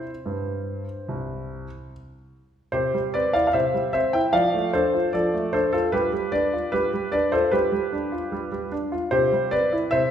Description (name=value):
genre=classical-period piano sonatina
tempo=75 BPM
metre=4/4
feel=straight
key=C major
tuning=A4 = 442 Hz
part: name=warm concert grand piano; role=solo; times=0.0-10.1 s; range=C2 to G5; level=-21 LUFS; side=equal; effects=none
room=wet recital hall reverb, RT60 1.8 s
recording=heard from further back in the room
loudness=-21 LUFS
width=side -9 dB against mid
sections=0.0-2.7 A section; 2.7-10.1 A section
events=none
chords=0.0 C5; 2.7 C; 4.3 Dm/F; 5.9 G7; 9.1 C